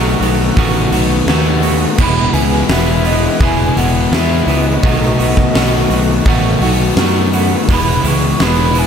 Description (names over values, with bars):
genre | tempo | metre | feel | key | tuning
rock, shoegaze and dream pop | 84 BPM | 4/4 | straight | E major | A4 = 440 Hz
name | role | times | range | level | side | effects
electric guitar through a small old amp | arpeggios | 0.0-8.9 s | F#3 to A4 | -25 LUFS | right 2 dB | ensemble chorus, tape echo
biting overdriven guitar | riff | 0.0-8.9 s | E2 to F#4 | -19 LUFS | right 11 dB | reverse reverb
overdriven semi-hollow guitar | riff | 0.0-8.9 s | E2 to F#4 | -17 LUFS | left 11 dB | wide subtle chorus
fuzz picked electric bass | bass | 0.0-8.9 s | E1 to F#2 | -16 LUFS | equal | overdrive
huge arena drum kit | drums | 0.2-8.9 s | crash cymbal, hi-hat, kick drum, snare drum | -17 LUFS | equal | none
mellow hollow concert flute | melody | 2.0-8.9 s | D#5 to C#6 | -22 LUFS | right 2 dB | tape echo
room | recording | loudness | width
small room ambience | none | -11 LUFS | side -7 dB against mid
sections
0.0-8.9 A section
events
none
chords
0.0 B7; 2.0 E; 4.8 B7; 7.7 E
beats
0.56 1.28 | 1.99 2.70 3.41 4.13 | 4.84 5.55 6.26 6.98 | 7.69 8.40